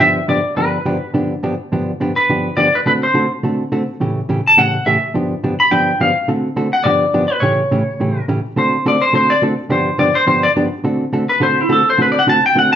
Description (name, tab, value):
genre	country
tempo	210 BPM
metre	4/4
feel	swing 59% on 8ths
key	unclear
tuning	A4 = 440 Hz
part	clean lap steel guitar	melody	0.0-12.8 s	E4 to B5	-13 LUFS	left 1 dB	none
part	hollow-body jazz guitar	accompaniment	0.0-12.8 s	G2 to A4	-17 LUFS	right 1 dB	none
room	wet large studio reverb, RT60 0.8 s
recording	band playing live in one room, nothing above 7.6 kHz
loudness	-13 LUFS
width	side -9 dB against mid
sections	0.0-8.6 A section; 8.6-12.8 B section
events	electric slide guitar solo 8.6-12.8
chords	0.0 G7; 2.9 D7; 4.0 A7; 5.1 G7; 6.3 D7; 6.9 G7; 7.4 A7; 8.6 D7; 9.7 G7; 10.8 D7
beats	0.00 0.29 | 0.57 0.86 1.14 1.43 | 1.72 2.00 2.29 2.57 | 2.86 3.14 3.43 3.71 | 4.00 4.28 4.57 4.86 | 5.14 5.42 5.71 6.00 | 6.28 6.57 6.85 7.14 | 7.42 7.71 7.99 8.28 | 8.56 8.85 9.13 9.42 | 9.70 9.99 10.28 10.56 | 10.85 11.13 11.42 11.70 | 11.99 12.27 12.56